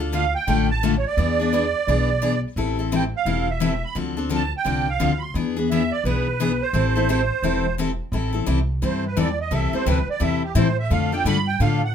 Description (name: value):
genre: acoustic string swing (jazz manouche)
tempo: 173 BPM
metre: 4/4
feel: swing 62% on 8ths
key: A minor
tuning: A4 = 441 Hz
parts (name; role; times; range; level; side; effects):
- picked steel-string acoustic guitar; accompaniment; 0.0-11.8 s; C3 to A4; -23 LUFS; left 5 dB; none
- upright bass; bass; 0.0-11.9 s; E1 to A2; -24 LUFS; right 1 dB; none
- musette accordion; melody; 0.1-11.9 s; G4 to C6; -24 LUFS; right 6 dB; none
room: moderate club reverb, RT60 0.6 s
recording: minimal, uncompressed stereo recording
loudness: -19 LUFS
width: side -8 dB against mid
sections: 0.0-8.1 A section; 8.1-11.9 B section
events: accordion solo 8.1-11.9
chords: 0.0 Dm; 1.2 E7; 2.6 Am7; 4.0 Dm7; 5.3 E7; 6.7 Am7; 9.5 C6; 10.9 Dm